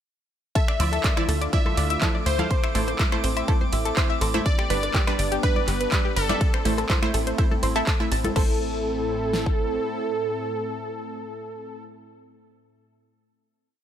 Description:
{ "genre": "progressive house", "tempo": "123 BPM", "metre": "4/4", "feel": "straight", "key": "A minor", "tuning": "A4 = 440 Hz", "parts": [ { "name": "plucky unison lead", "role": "melody", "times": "0.6-11.8 s", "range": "A4 to E5", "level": "-29 LUFS", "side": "equal", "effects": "phaser, sidechain pumping, ping-pong delay" }, { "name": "lush unison pad", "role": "sustained chords", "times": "1.0-11.8 s", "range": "A2 to F4", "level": "-33 LUFS", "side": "equal", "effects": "chorus, sidechain pumping" }, { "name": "analog pluck", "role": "arpeggios", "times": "0.6-8.6 s", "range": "G4 to A5", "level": "-30 LUFS", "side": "left 2 dB", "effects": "chorus, vintage 12-bit sampler grit, sidechain pumping, ping-pong delay" }, { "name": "big-room dance drum kit", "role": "drums", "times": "0.6-9.6 s", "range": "kick drum, snare drum", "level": "-23 LUFS", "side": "equal", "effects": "none" }, { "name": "big-room dance drum kit", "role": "drums", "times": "0.6-8.5 s", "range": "crash cymbal, finger snaps, handclaps, hi-hat, ride cymbal", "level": "-31 LUFS", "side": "equal", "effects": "none" }, { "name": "woodblock, cowbell and congas", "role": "percussion", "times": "0.6-8.3 s", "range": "none", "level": "-34 LUFS", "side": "equal", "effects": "sidechain pumping on perc" }, { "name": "drifting glass-harmonics texture", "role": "texture", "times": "1.6-8.4 s", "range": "D6", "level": "-39 LUFS", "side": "right 4 dB", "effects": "chorus, built-in reverb, sidechain pumping" }, { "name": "wide unison pluck", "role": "stabs", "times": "0.8-11.8 s", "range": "F3 to F5", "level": "-30 LUFS", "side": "right 2 dB", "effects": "sidechain pumping, ping-pong delay" }, { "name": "tight sequencer bass", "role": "bass", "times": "0.8-9.8 s", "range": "G1 to D2", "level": "-27 LUFS", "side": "equal", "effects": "sidechain pumping" } ], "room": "little or no reverb", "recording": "none", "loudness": "-21 LUFS", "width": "side -10 dB against mid", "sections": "0.6-8.4 drop; 8.4-12.3 final chord", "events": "drop 0.6-8.4", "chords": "0.6 Dmadd9; 2.5 Am; 4.5 G; 6.4 Am" }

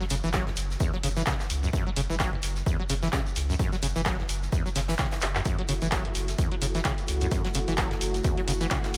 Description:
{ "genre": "acid house", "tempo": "129 BPM", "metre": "4/4", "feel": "swing 56% on 16ths", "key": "F# minor", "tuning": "A4 = 439 Hz", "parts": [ { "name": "acid bass, saw", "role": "riff", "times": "0.0-8.8 s", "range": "F#1 to F#3", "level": "-34 LUFS", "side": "equal", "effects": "overdrive, lush chorus, sidechain pumping, tape echo" }, { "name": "jazz brush drum kit", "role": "drums", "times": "0.0-9.0 s", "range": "hi-hat, snare drum", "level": "-45 LUFS", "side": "equal", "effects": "none" }, { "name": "saturated sub bass", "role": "bass", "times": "0.1-9.0 s", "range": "F#1 to C#2", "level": "-33 LUFS", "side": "equal", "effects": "sidechain pumping" }, { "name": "punchy analog drum machine", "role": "drums", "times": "0.1-9.0 s", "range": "handclaps, hi-hat", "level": "-34 LUFS", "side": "equal", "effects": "none" }, { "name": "shekere", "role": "percussion", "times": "0.1-9.0 s", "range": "none", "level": "-42 LUFS", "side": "equal", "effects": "none" }, { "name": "electronic kick drum", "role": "drums", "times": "0.3-8.8 s", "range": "none", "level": "-32 LUFS", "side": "equal", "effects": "none" }, { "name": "string machine, full ensemble", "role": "sustained chords", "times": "5.5-9.0 s", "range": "A3 to F#4", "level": "-37 LUFS", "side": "equal", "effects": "ensemble chorus, sidechain pumping" } ], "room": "light reverb, small room ambience", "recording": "none", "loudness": "-28 LUFS", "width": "mono", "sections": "0.0-9.0 A section", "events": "drum fill 5.2", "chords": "0.0 F#m7" }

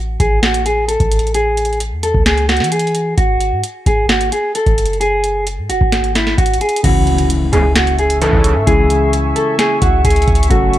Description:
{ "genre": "hip hop, trap", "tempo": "131 BPM", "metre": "4/4", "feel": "half-time", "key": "C# minor", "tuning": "A4 = 441 Hz", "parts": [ { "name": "clean 808-style bass", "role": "bass", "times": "0.0-10.8 s", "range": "F#1 to E3", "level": "-18 LUFS", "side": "equal", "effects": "none" }, { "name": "mellow electric guitar", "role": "melody", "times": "0.2-10.8 s", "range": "E4 to A4", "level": "-16 LUFS", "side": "equal", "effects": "none" }, { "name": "booming analog drum machine", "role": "drums", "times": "0.2-10.8 s", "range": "crash cymbal, hi-hat, kick drum, snare drum", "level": "-16 LUFS", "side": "equal", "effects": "none" }, { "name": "dark concert grand piano", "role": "accompaniment", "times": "6.8-10.8 s", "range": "C#3 to A4", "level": "-20 LUFS", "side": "left 4 dB", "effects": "none" }, { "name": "deep dark ambient pad", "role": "sustained chords", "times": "7.4-10.8 s", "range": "E5 to C#6", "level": "-24 LUFS", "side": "right 1 dB", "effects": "chorus, built-in reverb" }, { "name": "impact", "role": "sound effects", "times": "6.8-8.7 s", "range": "none", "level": "-25 LUFS", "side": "equal", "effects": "none" }, { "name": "sync-sweep polysynth", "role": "stabs", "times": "7.5-8.5 s", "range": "E2 to E3", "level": "-18 LUFS", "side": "right 3 dB", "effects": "chorus" } ], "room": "little or no reverb", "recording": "none", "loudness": "-12 LUFS", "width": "side -13 dB against mid", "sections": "0.0-6.8 A section; 6.8-10.8 B section", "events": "impact 6.8-8.7", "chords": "0.0 A; 3.2 F#sus2; 6.8 C#m" }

